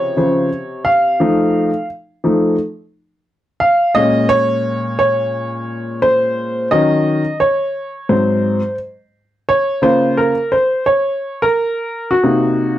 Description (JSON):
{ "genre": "hip hop", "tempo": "87 BPM", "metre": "4/4", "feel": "swing 61% on 16ths", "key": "Db major", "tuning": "A4 = 436 Hz", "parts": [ { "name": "clear upright piano", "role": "solo", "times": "0.0-12.8 s", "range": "Ab2 to F5", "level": "-13 LUFS", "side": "equal", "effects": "none" } ], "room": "moderate studio ambience, RT60 0.5 s", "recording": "dark, warm production", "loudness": "-14 LUFS", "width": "side -13 dB against mid", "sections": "0.0-9.5 A section; 9.5-12.8 B section", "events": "upright piano solo 0.0-9.5, 9.5-12.8", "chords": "0.0 Dbmaj7; 1.2 F7; 4.0 Bbm9; 6.7 Ebm7; 8.1 Ab7; 9.5 Db6; 12.2 Cm7b5" }